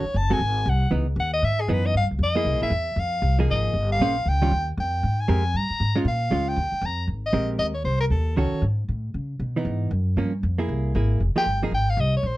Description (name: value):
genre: jazz, small-group swing and bop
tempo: 234 BPM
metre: 4/4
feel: swing 60% on 8ths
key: Ab major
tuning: A4 = 440 Hz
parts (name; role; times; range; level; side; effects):
- breathy soprano saxophone; melody; 0.0-8.6, 11.4-12.4 s; Ab4 to Bb5; -26 LUFS; left 1 dB; none
- hollow-body jazz guitar; accompaniment; 0.0-11.7 s; Eb3 to C5; -26 LUFS; right 2 dB; none
- upright bass; bass; 0.0-12.4 s; F1 to Db3; -23 LUFS; equal; none
room: light reverb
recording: dark, warm production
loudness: -21 LUFS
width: side -17 dB against mid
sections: 0.0-7.1 A section; 7.1-12.4 B section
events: soprano saxophone solo 0.0-7.1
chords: 0.4 Ab7; 0.9 Dbm9; 1.9 Gm7b5; 2.5 C7b13 (rootless); 3.0 Fm11; 4.0 Bbm9; 4.5 Ebadd9; 5.0 Abmaj9; 6.1 Bbm7; 6.6 Ebadd9; 7.1 Abmaj9; 8.1 Ebm7b5; 8.6 N.C.; 9.1 Dbm9; 10.2 Gm7b5; 10.7 Caug7; 11.2 Fm11